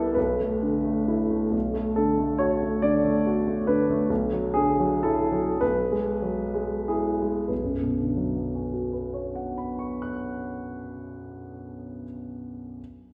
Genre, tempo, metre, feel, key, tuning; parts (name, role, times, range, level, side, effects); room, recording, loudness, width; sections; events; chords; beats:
classical, impressionist solo piano; 28-49 BPM (dotted quarters); 6/8; rubato; B dorian; A4 = 440 Hz
clear grand piano; solo; 0.0-12.8 s; B1 to F#6; -26 LUFS; equal
wet recital hall reverb, RT60 1.4 s; recorded in a church or concert hall; -26 LUFS; mono
0.0-7.5 A section; 7.5-10.6 B section
slowing down 0.2-7.5
0.2 Bm7; 4.1 Bmadd11; 5.6 Eadd9/B; 7.5 Bmadd9
0.16 | 1.54 2.84 | 4.09 5.60 | 7.50 9.05